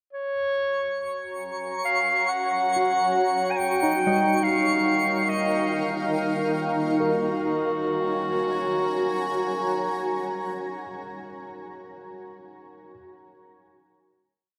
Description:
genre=ambient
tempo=70 BPM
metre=4/4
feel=straight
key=F# major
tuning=A4 = 440 Hz
part: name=clear clarinet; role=melody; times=0.1-10.8 s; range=F#4 to G#5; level=-28 LUFS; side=equal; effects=diffuse ambient delay
part: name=granular cloud pad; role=sustained chords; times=1.3-11.2 s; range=D#4 to A#5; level=-30 LUFS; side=equal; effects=built-in reverb
part: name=twinkling granular texture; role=texture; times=0.7-7.0 s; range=C#6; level=-36 LUFS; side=equal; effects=built-in reverb
part: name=overdriven tine electric piano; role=arpeggios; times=2.8-12.9 s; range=G3 to D#5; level=-31 LUFS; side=equal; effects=phaser, diffuse ambient delay
room=wet huge ambient reverb, RT60 8.0 s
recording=none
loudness=-25 LUFS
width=mono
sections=0.1-7.0 A section; 7.0-10.4 final chord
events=filter sweep on ambient pad 0.1-7.0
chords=0.1 F#; 3.6 D#; 7.0 F#

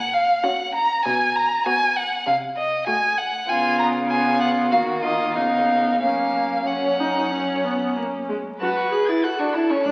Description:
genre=quick classical-period movement for string quartet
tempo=91-99 BPM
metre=4/4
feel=rubato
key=F# major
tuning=A4 = 440 Hz
part: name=rich violin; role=melody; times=0.0-9.9 s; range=Eb5 to A6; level=-24 LUFS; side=equal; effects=none
part: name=warm cello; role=bass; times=0.0-9.9 s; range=C#2 to D#3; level=-34 LUFS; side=equal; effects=none
part: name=warm violin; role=second line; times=0.4-9.9 s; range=C#4 to B4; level=-28 LUFS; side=equal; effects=none
part: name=rich viola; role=accompaniment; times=0.4-9.9 s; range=G#3 to G#4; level=-27 LUFS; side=equal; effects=none
room=wet recital hall reverb, RT60 1.5 s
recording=very old 78 rpm record, vinyl crackle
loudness=-21 LUFS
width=mono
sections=0.0-8.6 A section; 8.6-9.9 B section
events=none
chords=0.0 F#/A#; 1.1 G#m9/B; 2.3 Cdim7; 3.5 C#7; 4.7 D#m; 5.4 C#9; 6.0 F#; 8.6 F#m

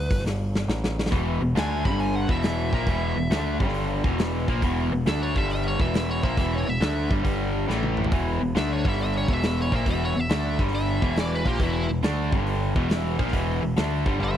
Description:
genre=blues rock power trio and southern rock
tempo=138 BPM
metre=4/4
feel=swing 68% on 8ths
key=unclear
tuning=A4 = 440 Hz
part: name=biting lead guitar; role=melody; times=0.0-14.4 s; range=E4 to B5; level=-31 LUFS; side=equal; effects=overdrive, slapback echo
part: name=growling picked electric bass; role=bass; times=0.0-14.4 s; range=E1 to D2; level=-28 LUFS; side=equal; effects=overdrive
part: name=big rock drum kit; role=drums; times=0.1-14.4 s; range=hi-hat, kick drum, snare drum, toms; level=-27 LUFS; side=equal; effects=none
part: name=crunchy overdriven guitar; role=riff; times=1.1-14.4 s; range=E2 to D4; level=-26 LUFS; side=left 1 dB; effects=spring reverb
room=little or no reverb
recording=dry, close 1970s-style studio recording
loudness=-22 LUFS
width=side -10 dB against mid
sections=0.0-1.1 A section; 1.1-14.4 B section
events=lead electric guitar solo 0.0-1.1; drum fill 0.2-1.1, 7.7-8.1, 14.2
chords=0.2 N.C.; 1.1 E5; 1.8 G5; 2.2 E5; 3.5 G5; 4.0 E5; 5.3 G5; 5.7 E5; 7.2 G5; 7.7 A5; 8.1 E5; 8.8 G5; 9.2 E5; 10.5 G5; 11.0 E5; 12.3 G5; 12.7 E5

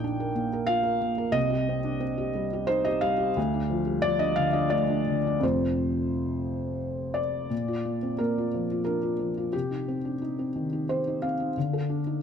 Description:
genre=neoclassical minimalist piano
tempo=89 BPM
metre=3/4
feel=rubato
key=Bb major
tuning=A4 = 440 Hz
part: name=felt-muted upright piano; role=solo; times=0.0-12.2 s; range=F1 to G5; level=-25 LUFS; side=equal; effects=none
room=light reverb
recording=close, detailed microphones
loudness=-25 LUFS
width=side -7 dB against mid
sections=0.0-7.5 A section; 7.5-12.2 A section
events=none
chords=0.0 Bb; 1.4 Cm; 3.4 Dm; 5.4 F; 7.5 Bb; 9.5 Cm; 11.6 Dm

